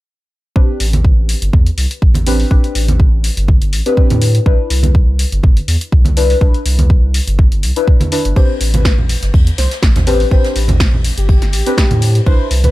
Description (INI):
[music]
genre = deep house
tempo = 123 BPM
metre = 4/4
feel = swing 54% on 16ths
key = A minor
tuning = A4 = 440 Hz
[part]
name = deep mellow chord stab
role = stabs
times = 0.6-12.7 s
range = C4 to B4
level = -19 LUFS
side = left 3 dB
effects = chorus, phaser, sidechain pumping, analog delay
[part]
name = round analog bass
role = bass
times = 0.6-12.7 s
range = G1 to A2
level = -14 LUFS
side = equal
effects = sidechain pumping
[part]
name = electronic kick drum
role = drums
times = 0.6-12.4 s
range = none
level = -10 LUFS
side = equal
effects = none
[part]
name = punchy analog drum machine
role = drums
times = 0.8-12.7 s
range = hi-hat, snare drum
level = -21 LUFS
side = left 1 dB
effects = overdrive
[part]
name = congas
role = percussion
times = 0.9-12.7 s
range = none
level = -19 LUFS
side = right 2 dB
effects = none
[part]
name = warm velvety synth lead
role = melody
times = 8.4-12.7 s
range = G4 to C5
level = -23 LUFS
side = equal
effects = chorus, analog delay
[part]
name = jazz brush drum kit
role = drums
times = 8.4-12.6 s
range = ride cymbal, snare drum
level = -29 LUFS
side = left 2 dB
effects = sidechain pumping on cymbals, high-pass filter on cymbals, high-pass filter on snare, high-pass filter on room
[sound]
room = small room reverb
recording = none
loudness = -10 LUFS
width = side -17 dB against mid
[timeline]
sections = 0.6-12.7 A section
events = none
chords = 0.6 Am11; 4.5 Cmaj9; 8.4 Am11